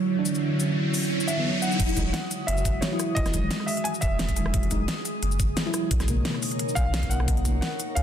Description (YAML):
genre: liquid drum and bass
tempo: 175 BPM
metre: 4/4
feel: swing 54% on 16ths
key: E lydian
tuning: A4 = 441 Hz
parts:
  - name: glassy FM pad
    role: sustained chords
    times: 0.0-8.0 s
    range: D3 to D#6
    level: -29 LUFS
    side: right 1 dB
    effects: ensemble chorus, built-in reverb
  - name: riser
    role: sound effects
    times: 0.0-1.8 s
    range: none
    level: -31 LUFS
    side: left 2 dB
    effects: none
  - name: mellow FM electric piano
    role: accompaniment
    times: 0.2-7.6 s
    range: B2 to E4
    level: -31 LUFS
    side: equal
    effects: chorus, tremolo
  - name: pop drum kit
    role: drums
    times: 0.3-8.0 s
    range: crash cymbal, hi-hat, rim click, shaker, snare drum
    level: -31 LUFS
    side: left 1 dB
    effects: studio reverb
  - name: dark grand piano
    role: melody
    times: 1.3-4.7, 6.8-8.0 s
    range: C#5 to G#5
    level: -32 LUFS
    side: equal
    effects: ping-pong delay
  - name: saturated sub bass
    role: bass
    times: 1.8-8.0 s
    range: E1 to C#2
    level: -27 LUFS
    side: equal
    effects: tube saturation
  - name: electronic kick drum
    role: drums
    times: 1.8-7.5 s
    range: none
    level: -27 LUFS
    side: equal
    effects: studio reverb
room: moderate concert hall reverb, RT60 2.1 s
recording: dense, heavily limited modern master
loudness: -23 LUFS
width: side -9 dB against mid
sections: 0.0-1.8 A section; 1.8-8.0 B section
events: riser 0.0-1.8; drop 1.8-8.0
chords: 0.0 Dmaj9; 1.8 Emaj9; 5.9 Bmaj9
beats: 0.08 | 0.42 0.77 1.11 1.45 | 1.80 2.14 2.48 2.83 | 3.17 3.51 3.85 4.20 | 4.54 4.88 5.22 5.57 | 5.91 6.25 6.60 6.94 | 7.28 7.62 7.97